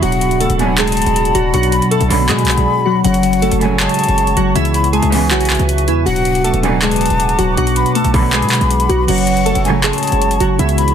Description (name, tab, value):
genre	hip hop, trap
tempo	159 BPM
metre	4/4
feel	half-time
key	F# minor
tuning	A4 = 443 Hz
part	glassy digital keys	melody	0.0-10.9 s	E3 to A4	-18 LUFS	equal	chorus, phaser
part	breathy concert flute	second line	0.0-10.9 s	F#5 to B5	-19 LUFS	left 5 dB	ping-pong delay
part	mellow tine electric piano	accompaniment	0.0-10.9 s	B2 to C#5	-20 LUFS	equal	medium stereo tremolo
part	warbly tape-like pad	sustained chords	0.0-10.9 s	F#4 to D6	-24 LUFS	right 2 dB	chorus, built-in reverb
part	hard-hitting 808-style bass	bass	0.0-10.9 s	C#1 to B2	-18 LUFS	equal	none
part	trap drum kit	drums	0.0-10.9 s	crash cymbal, handclaps, hi-hat, kick drum	-20 LUFS	left 1 dB	overdrive
part	dark studio string section	stabs	0.6-10.0 s	A2 to F#3	-21 LUFS	right 9 dB	none
room	light reverb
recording	dense, heavily limited modern master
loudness	-12 LUFS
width	side -8 dB against mid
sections	0.0-9.1 A section; 9.1-10.9 A section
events	drums muted 2.7-3.0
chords	0.0 D6; 1.5 Bm7; 3.0 F#m; 4.6 C#m7; 6.1 D6; 7.6 Bm7; 9.1 F#m